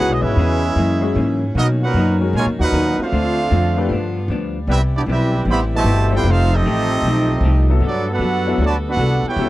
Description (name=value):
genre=jazz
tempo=153 BPM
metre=4/4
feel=swing 66% on 8ths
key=unclear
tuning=A4 = 440 Hz
part: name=clear trumpet section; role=melody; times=0.0-9.5 s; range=B3 to B5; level=-22 LUFS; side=right 2 dB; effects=tape echo
part: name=clear trombone section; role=second line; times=0.0-9.5 s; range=A#2 to G4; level=-24 LUFS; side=right 2 dB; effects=none
part: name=clear grand piano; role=accompaniment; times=0.0-9.5 s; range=F#3 to B4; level=-23 LUFS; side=left 7 dB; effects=none
part: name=vintage hollow-body jazz guitar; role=accompaniment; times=0.0-9.5 s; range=F#2 to A4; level=-25 LUFS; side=left 2 dB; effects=none
part: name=warm saxophone section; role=sustained chords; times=0.0-9.5 s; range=C#3 to A4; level=-29 LUFS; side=left 1 dB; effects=none
part: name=upright bass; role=bass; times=0.0-9.5 s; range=F1 to B2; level=-18 LUFS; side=equal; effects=none
room=light reverb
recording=dry, close 1970s-style studio recording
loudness=-15 LUFS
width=side -16 dB against mid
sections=0.0-9.5 A section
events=none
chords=0.0 C#m7; 0.8 F#7; 1.5 Bmaj7; 3.1 Dm7; 3.9 G7; 4.7 Cmaj7; 6.2 F9; 7.8 Gmaj9